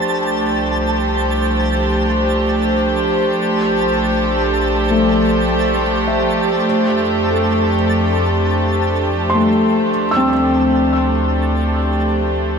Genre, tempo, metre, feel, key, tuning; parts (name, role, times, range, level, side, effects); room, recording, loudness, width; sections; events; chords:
ambient; 74 BPM; 4/4; straight; A4 = 441 Hz
dark chamber string section; sustained chords; 0.0-12.6 s; F3 to C5; -16 LUFS; right 1 dB; shimmer reverb
round analog bass; bass; 0.0-12.6 s; Bb1 to F2; -22 LUFS; left 1 dB
twinkling granular texture; texture; 0.0-12.6 s; A5; -26 LUFS; right 1 dB; built-in reverb, shimmer reverb
felt-muted upright piano; arpeggios; 4.9-12.6 s; A3 to E6; -19 LUFS; left 2 dB; ping-pong delay, shimmer reverb
wet lush hall reverb, RT60 2.8 s; -14 LUFS; side -6 dB against mid
0.0-12.6 A section
fade-out on synth texture 0.0-12.6
0.1 C5; 3.4 Bbmaj7; 6.6 Fmaj7; 9.9 Dm7